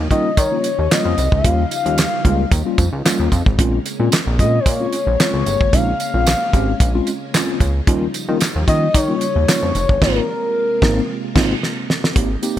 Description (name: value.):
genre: early-eighties boogie funk.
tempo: 112 BPM.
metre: 4/4.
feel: straight.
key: unclear.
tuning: A4 = 440 Hz.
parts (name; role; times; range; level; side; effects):
string machine, violins; sustained chords; 0.0-12.6 s; C3 to G4; -28 LUFS; equal; ensemble chorus.
chorused synth bass; bass; 0.0-12.6 s; F1 to Eb3; -19 LUFS; equal; none.
gliding portamento lead; melody; 0.1-11.6 s; Bb4 to F5; -20 LUFS; left 3 dB; chorus.
mellow tine electric piano; accompaniment; 0.1-12.6 s; G3 to G4; -22 LUFS; left 2 dB; medium stereo tremolo.
damped 70s drum kit; drums; 0.1-12.6 s; crash cymbal, handclaps, hi-hat, kick drum, snare drum; -17 LUFS; equal; gated reverb.
tambourine; percussion; 0.1-12.6 s; none; -31 LUFS; right 6 dB; none.
room: studio ambience.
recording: none.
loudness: -15 LUFS.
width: side -12 dB against mid.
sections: 0.0-12.2 A section.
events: band accent 10.0-12.2; drum fill 11.6-12.2.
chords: 0.0 Eb9; 3.6 Bbm9; 7.9 Eb9; 10.0 Ab69.